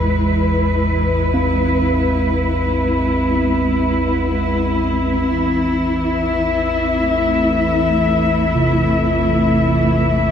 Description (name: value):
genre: ambient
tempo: 46 BPM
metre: 4/4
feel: straight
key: A harmonic minor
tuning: A4 = 440 Hz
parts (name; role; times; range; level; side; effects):
- dark studio cello section; sustained chords; 0.0-10.3 s; E3 to E5; -17 LUFS; left 1 dB; none
- deep rumbling drone; drone; 0.0-10.3 s; A1 to E2; -22 LUFS; equal; built-in reverb, lush chorus
- bronze singing bowl; arpeggios; 1.3-10.3 s; C3 to C4; -21 LUFS; right 1 dB; ping-pong delay
room: wet plate reverb, RT60 3.5 s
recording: dreamy mix soaked in reverb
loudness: -15 LUFS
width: side -8 dB against mid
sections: 0.0-5.3 A section; 5.3-10.3 B section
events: none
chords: 0.0 Fm (rootless); 5.3 Am